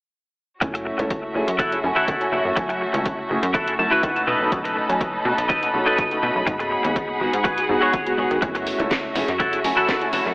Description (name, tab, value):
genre	filtered disco house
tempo	123 BPM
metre	4/4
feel	straight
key	F# dorian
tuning	A4 = 440 Hz
part	warm grand piano	accompaniment	0.6-10.3 s	G#3 to G#5	-25 LUFS	equal	phaser, vintage 12-bit sampler grit, sidechain pumping, low-pass filter, tape echo
part	muted studio violin section	sustained chords	0.6-10.3 s	F#4 to B5	-26 LUFS	equal	sidechain pumping, low-pass filter
part	twelve-string electric guitar	riff	0.6-10.1 s	D#4 to A5	-22 LUFS	equal	sidechain pumping, low-pass filter, tape echo
part	plucky analog bass	bass	0.6-10.3 s	F#1 to D#3	-28 LUFS	equal	sidechain pumping, low-pass filter
part	electronic kick drum	drums	0.6-10.0 s	none	-28 LUFS	equal	overdrive
part	house drum kit	drums	0.6-10.2 s	hi-hat, snare drum	-29 LUFS	equal	sidechain pumping on hats, tape echo
room	moderate plate reverb, RT60 1.5 s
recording	echo-heavy mix, AM radio sound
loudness	-19 LUFS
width	side -31 dB against mid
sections	0.6-10.3 A section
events	clean electric guitar fill 3.5-4.5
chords	0.6 F#m7; 4.3 B7; 6.5 G#m7; 8.4 F#m7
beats	| 0.62 1.11 1.59 2.08 | 2.57 3.06 3.54 4.03 | 4.52 5.01 5.50 5.98 | 6.47 6.96 7.45 7.93 | 8.42 8.91 9.40 9.89